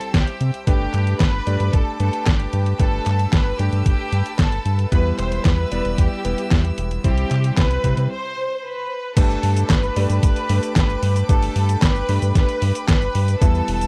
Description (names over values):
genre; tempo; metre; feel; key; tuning
italo disco; 113 BPM; 4/4; straight; unclear; A4 = 442 Hz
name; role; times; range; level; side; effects
rich studio violin section; melody; 0.0-13.9 s; G4 to C5; -29 LUFS; equal; tape echo
rich studio string section; sustained chords; 0.0-13.9 s; C4 to E6; -37 LUFS; equal; none
clear electric grand piano; stabs; 0.0-13.9 s; G3 to D5; -30 LUFS; equal; none
detuned 8-bit digital drum machine; drums; 0.0-13.9 s; cabasa, crash cymbal, handclaps, hi-hat, snare drum; -26 LUFS; equal; none
round analog bass; bass; 0.1-13.9 s; E1 to C3; -23 LUFS; equal; tube saturation
electronic kick drum; drums; 0.1-13.5 s; none; -20 LUFS; equal; none
room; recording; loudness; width
little or no reverb; dry, close 1970s-style studio recording; -19 LUFS; mono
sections
0.0-9.2 A section; 9.2-13.9 B section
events
break 8.1-9.2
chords
0.0 C; 0.7 Gadd9; 4.9 Em; 7.0 C; 9.2 Gadd9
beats
0.14 | 0.67 1.20 1.73 2.27 | 2.80 3.33 3.86 4.39 | 4.92 5.45 5.98 6.51 | 7.04 7.58 8.11 8.64 | 9.17 9.70 10.23 10.76 | 11.29 11.82 12.35 12.88 | 13.42